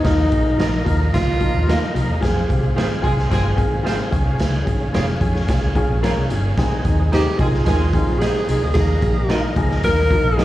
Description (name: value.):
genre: uptempo 1960s-style soul.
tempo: 110 BPM.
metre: 4/4.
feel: straight.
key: unclear.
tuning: A4 = 440 Hz.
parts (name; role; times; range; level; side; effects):
breathy tenor saxophone; melody; 0.0-1.9, 7.1-10.4 s; Eb4 to Bb4; -21 LUFS; equal; plate reverb, slapback echo.
dark upright piano; accompaniment; 0.0-10.4 s; F3 to Bb4; -25 LUFS; left 3 dB; plate reverb, slapback echo.
tonewheel organ; sustained chords; 0.0-10.4 s; Ab4 to Bb5; -30 LUFS; right 1 dB; slow rotary speaker, overdrive, chorus vibrato, plate reverb.
vintage muted fingered electric bass; bass; 0.0-10.4 s; F1 to F2; -20 LUFS; equal; none.
raw garage drum kit; drums; 0.0-10.4 s; hi-hat, kick drum, snare drum; -21 LUFS; equal; none.
clean electric guitar; stabs; 0.6-10.4 s; Bb3 to F5; -30 LUFS; right 5 dB; spring reverb, plate reverb, slapback echo, analog delay.
clear horn section; second line; 3.0-3.5, 7.4-7.8 s; Eb3 to Ab4; -26 LUFS; right 2 dB; plate reverb, slapback echo.
room: light reverb.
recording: live gig heard through the venue's PA, club ambience, vinyl crackle.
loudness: -16 LUFS.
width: side -15 dB against mid.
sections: 0.0-10.4 A section.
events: none.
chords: 0.1 Ebsus2; 2.2 Fm; 4.1 Db; 6.6 Ab; 8.8 Ebsus2.